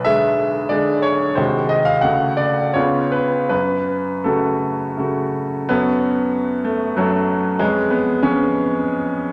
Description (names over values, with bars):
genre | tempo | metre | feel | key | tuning
classical, romantic character piece for solo piano | 78-99 BPM | 3/4 | rubato | F# minor | A4 = 443 Hz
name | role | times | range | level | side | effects
bright grand piano | solo | 0.0-9.3 s | B1 to F#5 | -19 LUFS | equal | none
room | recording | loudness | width
wet scoring stage reverb, RT60 1.9 s | none | -19 LUFS | mono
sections
0.0-5.7 A section; 5.7-9.3 B section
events
none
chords
0.0 G#dim/B; 1.4 G#7/B#; 2.0 F#m/C#; 2.8 C#7; 3.5 F#m; 7.6 C#7/E#